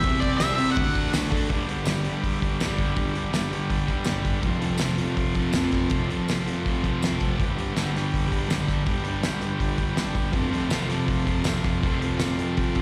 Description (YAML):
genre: garage rock duo or trio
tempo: 163 BPM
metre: 4/4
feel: straight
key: G mixolydian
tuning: A4 = 440 Hz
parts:
  - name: octave-fuzz lead guitar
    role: melody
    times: 0.0-1.1 s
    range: D5 to F#5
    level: -28 LUFS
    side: equal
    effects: distortion, plate reverb, slapback echo
  - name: combo organ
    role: sustained chords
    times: 0.0-12.8 s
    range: D4 to D5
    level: -36 LUFS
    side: equal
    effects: plate reverb
  - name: thick fuzz guitar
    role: riff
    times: 0.0-12.8 s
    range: F2 to D4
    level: -28 LUFS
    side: equal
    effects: distortion, slapback echo
  - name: cloth-damped thuddy drum kit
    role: drums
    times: 0.0-12.8 s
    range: hi-hat, kick drum, snare drum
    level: -30 LUFS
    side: equal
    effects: none
  - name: tambourine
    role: percussion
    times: 0.4-12.3 s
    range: none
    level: -41 LUFS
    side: equal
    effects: none
room: moderate club reverb, RT60 0.6 s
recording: live gig heard through the venue's PA, recital hall reverb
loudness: -25 LUFS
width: mono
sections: 0.0-1.5 A section; 1.5-12.8 B section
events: none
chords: 0.0 C; 0.8 D; 1.5 G; 4.4 F; 7.4 G; 10.3 F